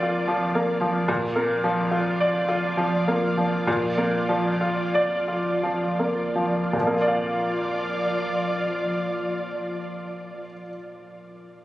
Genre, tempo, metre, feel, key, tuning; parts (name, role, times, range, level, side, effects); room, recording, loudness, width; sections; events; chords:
neoclassical piano and strings; 53-74 BPM; 3/4; rubato; Bb major; A4 = 440 Hz
bright grand piano; accompaniment; 0.0-11.6 s; Bb2 to F5; -23 LUFS; equal
ethereal airy pad; sustained chords; 0.0-10.4 s; F3 to D5; -27 LUFS; equal; ensemble chorus, built-in reverb
moderate scoring stage reverb, RT60 1.9 s; recorded on a phone in the room, studio ambience; -22 LUFS; side -16 dB against mid
0.0-6.7 A section; 6.7-10.1 B section
slowing down 0.0-6.7
0.0 Bb